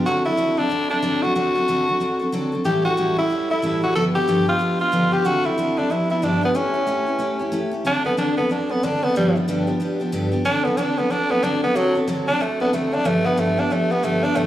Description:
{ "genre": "rock", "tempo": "185 BPM", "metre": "4/4", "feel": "swing 61% on 8ths", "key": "D mixolydian", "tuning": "A4 = 440 Hz", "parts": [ { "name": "picked steel-string acoustic guitar", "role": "accompaniment", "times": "0.0-14.5 s", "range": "G2 to A4", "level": "-22 LUFS", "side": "equal", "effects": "slapback echo" }, { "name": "raspy tenor saxophone", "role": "melody", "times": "0.1-14.5 s", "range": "F#3 to A4", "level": "-20 LUFS", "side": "equal", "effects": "slapback echo, analog delay" } ], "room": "light reverb, small room reverb", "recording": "live gig heard through the venue's PA, club reverb", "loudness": "-18 LUFS", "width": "side -13 dB against mid", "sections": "0.0-7.9 A section; 7.9-14.5 B section", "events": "tenor saxophone solo 7.9-14.5", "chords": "0.1 D7; 2.7 A7; 4.0 G7; 5.3 D7; 5.9 G7; 6.6 A7; 7.9 D7; 9.2 G7; 10.5 D7; 13.1 G7" }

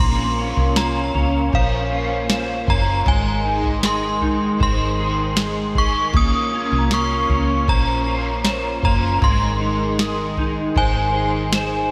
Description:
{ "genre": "dream pop", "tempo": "78 BPM", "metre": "4/4", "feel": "straight", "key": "Bb minor", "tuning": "A4 = 441 Hz", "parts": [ { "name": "synth chime", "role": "melody", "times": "0.0-11.9 s", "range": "F5 to Eb6", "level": "-25 LUFS", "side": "equal", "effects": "ensemble chorus, analog delay" }, { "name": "cranked stack guitar", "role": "accompaniment", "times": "0.0-11.9 s", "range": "Ab3 to C5", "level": "-32 LUFS", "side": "equal", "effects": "overdrive, harmonic tremolo, ensemble chorus" }, { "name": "phased analog pad", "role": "sustained chords", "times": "0.0-11.9 s", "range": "Eb3 to Db4", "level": "-28 LUFS", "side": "equal", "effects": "phaser, chorus" }, { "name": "clean electric guitar", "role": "arpeggios", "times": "0.0-11.9 s", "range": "Ab3 to C5", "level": "-29 LUFS", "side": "equal", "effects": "ensemble chorus, analog delay" }, { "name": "vintage muted fingered electric bass", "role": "bass", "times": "0.0-11.9 s", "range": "Gb1 to Db2", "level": "-26 LUFS", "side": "equal", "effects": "none" }, { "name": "celesta", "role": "texture", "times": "0.4-9.5 s", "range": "F5 to Bb5", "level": "-37 LUFS", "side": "equal", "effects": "analog delay" }, { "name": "booming analog drum machine", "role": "drums", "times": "0.6-11.7 s", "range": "kick drum, snare drum, toms", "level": "-24 LUFS", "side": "equal", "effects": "none" } ], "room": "wet lush hall reverb, RT60 2.6 s", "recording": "dreamy mix soaked in reverb", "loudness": "-19 LUFS", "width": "mono", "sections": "0.0-11.9 A section", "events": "none", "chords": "0.0 Bbmadd9; 3.1 Ab; 6.1 Bbmadd9; 9.2 Ab" }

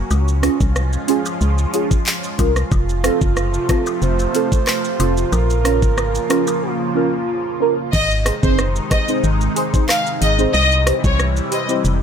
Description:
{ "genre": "dancehall", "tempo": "92 BPM", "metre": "4/4", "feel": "straight", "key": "unclear", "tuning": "A4 = 440 Hz", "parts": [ { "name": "lush unison pad", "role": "sustained chords", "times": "0.0-12.0 s", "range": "C3 to F4", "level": "-24 LUFS", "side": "equal", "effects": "chorus, phaser, sidechain pumping" }, { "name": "organ-like FM bass", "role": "bass", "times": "0.0-12.0 s", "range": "F1 to Db2", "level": "-18 LUFS", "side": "equal", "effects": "none" }, { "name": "island pop drum kit", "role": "drums", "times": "0.1-12.0 s", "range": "crash cymbal, handclaps, hi-hat, kick drum, rim click, shaker", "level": "-20 LUFS", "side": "equal", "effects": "none" }, { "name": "woodblock and cabasa", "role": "percussion", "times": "0.1-6.6 s", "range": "none", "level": "-33 LUFS", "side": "left 10 dB", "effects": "none" }, { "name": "deep mellow chord stab", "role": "accompaniment", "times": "0.4-11.8 s", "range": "C4 to Eb5", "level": "-21 LUFS", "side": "right 2 dB", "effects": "chorus, phaser" }, { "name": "breathy flute-like synth lead", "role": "second line", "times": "2.7-7.9 s", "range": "F4 to C5", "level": "-23 LUFS", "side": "right 8 dB", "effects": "chorus, ping-pong delay" }, { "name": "warm studio violin section", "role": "melody", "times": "7.9-11.6 s", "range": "C5 to F5", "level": "-20 LUFS", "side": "left 1 dB", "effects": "ping-pong delay" } ], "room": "little or no reverb", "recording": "none", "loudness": "-15 LUFS", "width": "side -8 dB against mid", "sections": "0.0-7.9 A section; 7.9-12.0 B section", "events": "break 6.6-7.9", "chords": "0.1 Db; 2.7 F; 5.3 Bbm; 7.9 Ab; 10.5 C" }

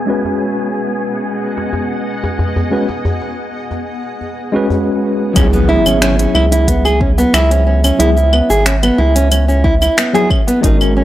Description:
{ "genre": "organic downtempo", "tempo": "91 BPM", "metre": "4/4", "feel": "straight", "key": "C# minor", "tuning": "A4 = 437 Hz", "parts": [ { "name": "granular cloud pad", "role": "sustained chords", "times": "0.0-5.3 s", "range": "B3 to F#5", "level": "-24 LUFS", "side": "equal", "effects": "built-in reverb, sidechain pumping" }, { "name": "wind-like tuned noise texture", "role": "texture", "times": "0.0-5.4 s", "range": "G#5", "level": "-29 LUFS", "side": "left 1 dB", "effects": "built-in reverb" }, { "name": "tine electric piano", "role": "accompaniment", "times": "0.1-11.0 s", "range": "F#3 to B4", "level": "-18 LUFS", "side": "left 1 dB", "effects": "overdrive, medium stereo tremolo, sidechain pumping, analog delay" }, { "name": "djembe", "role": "percussion", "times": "0.2-4.8 s", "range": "none", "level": "-19 LUFS", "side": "left 1 dB", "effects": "none" }, { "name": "nylon-string guitar", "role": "arpeggios", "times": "5.4-11.0 s", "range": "B3 to G#4", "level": "-14 LUFS", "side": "right 1 dB", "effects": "analog delay" }, { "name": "round analog bass", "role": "bass", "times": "5.4-11.0 s", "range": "G#1 to C#2", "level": "-14 LUFS", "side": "equal", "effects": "tube saturation, sidechain pumping" }, { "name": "afro-pop drum kit", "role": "drums", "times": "5.4-10.9 s", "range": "claves, finger snaps, hi-hat, shaker", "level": "-18 LUFS", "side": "left 1 dB", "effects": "none" }, { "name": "electronic kick drum", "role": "drums", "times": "5.4-10.8 s", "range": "none", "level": "-15 LUFS", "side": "equal", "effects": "none" }, { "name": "impact", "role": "sound effects", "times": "5.4-8.0 s", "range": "none", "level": "-23 LUFS", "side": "equal", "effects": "none" } ], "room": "light reverb, digital ambience", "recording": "dry, gritty hardware recording, transformer saturation, low-pass filter", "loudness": "-11 LUFS", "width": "side -14 dB against mid", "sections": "0.0-5.4 A section; 5.4-11.0 B section", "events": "filter sweep 0.0-5.4; impact 5.4-8.0", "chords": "0.1 G#m7; 5.4 C#m7" }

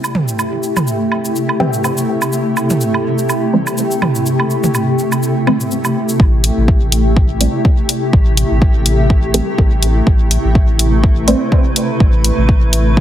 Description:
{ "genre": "dub techno", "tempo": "124 BPM", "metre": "4/4", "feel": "swing 55% on 16ths", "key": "A minor", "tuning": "A4 = 441 Hz", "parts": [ { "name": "granular cloud pad", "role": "sustained chords", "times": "0.0-13.0 s", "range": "C3 to B4", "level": "-17 LUFS", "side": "equal", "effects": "built-in reverb, sidechain pumping" }, { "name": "electronic shaker and hi-hat", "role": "drums", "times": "0.0-12.8 s", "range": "none", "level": "-20 LUFS", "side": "left 1 dB", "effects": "none" }, { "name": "electronic woodblock and toms", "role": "percussion", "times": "0.0-5.9 s", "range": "none", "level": "-20 LUFS", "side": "right 2 dB", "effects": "sidechain pumping on toms, sidechain pumping on perc, dub echo" }, { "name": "filtered dub chord stab", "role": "stabs", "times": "1.6-11.4 s", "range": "E3 to C4", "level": "-19 LUFS", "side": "right 1 dB", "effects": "phaser, sidechain pumping, dub echo" }, { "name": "warm sub bass", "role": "bass", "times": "6.2-13.0 s", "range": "A1", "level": "-15 LUFS", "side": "equal", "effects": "tube saturation, sidechain pumping" }, { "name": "electronic kick drum", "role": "drums", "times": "6.2-13.0 s", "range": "none", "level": "-12 LUFS", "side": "equal", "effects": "none" } ], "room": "light reverb, digital ambience", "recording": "heavily compressed radio sound, multiband compression", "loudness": "-12 LUFS", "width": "side -11 dB against mid", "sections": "0.0-6.2 A section; 6.2-13.0 B section", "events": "filter sweep on ambient pad 0.0-6.2", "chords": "0.0 Am7" }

